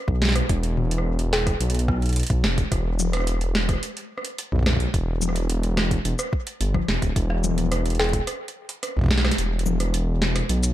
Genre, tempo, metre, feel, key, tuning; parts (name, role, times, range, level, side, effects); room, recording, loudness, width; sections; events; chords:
IDM; 108 BPM; 4/4; straight; A4 = 438 Hz
dark detuned saw bass; bass; 0.1-10.7 s; D1 to B1; -23 LUFS; equal
electronic kick drum; drums; 0.1-9.1 s; -24 LUFS; equal; overdrive
booming analog drum machine; drums; 0.2-10.7 s; cabasa, hi-hat, rim click, snare drum, toms; -26 LUFS; equal; analog delay
little or no reverb; echo-heavy mix; -21 LUFS; side -13 dB against mid
0.0-10.7 A section
kick drops out 9.4-10.7